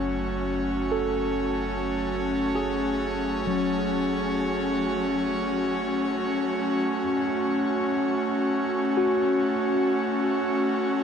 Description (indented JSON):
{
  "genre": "ambient",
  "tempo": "free time",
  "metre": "none",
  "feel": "none",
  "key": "F# minor",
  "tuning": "A4 = 440 Hz",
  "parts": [
    { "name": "airy breathy pad", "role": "sustained chords", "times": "0.0-11.0 s", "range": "A3 to F#4", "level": "-24 LUFS", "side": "equal", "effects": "chorus" },
    { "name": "warm sub bass", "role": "bass", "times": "0.0-6.8 s", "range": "F#1", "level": "-38 LUFS", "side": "equal", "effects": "none" },
    { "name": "analog drone", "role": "drone", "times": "0.0-6.9 s", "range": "F#3 to C#4", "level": "-36 LUFS", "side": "equal", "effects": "chorus" },
    { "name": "tine electric piano", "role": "arpeggios", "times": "0.9-11.0 s", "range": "F#3 to A4", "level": "-30 LUFS", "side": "left 1 dB", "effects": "phaser, diffuse ambient delay" }
  ],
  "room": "moderate shimmer reverb, RT60 8.4 s",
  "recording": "none",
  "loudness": "-23 LUFS",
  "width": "side -7 dB against mid",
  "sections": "0.0-6.9 A section; 6.9-11.0 B section",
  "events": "fade-out on sub bass 0.0-6.9",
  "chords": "0.0 F#m",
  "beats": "free time"
}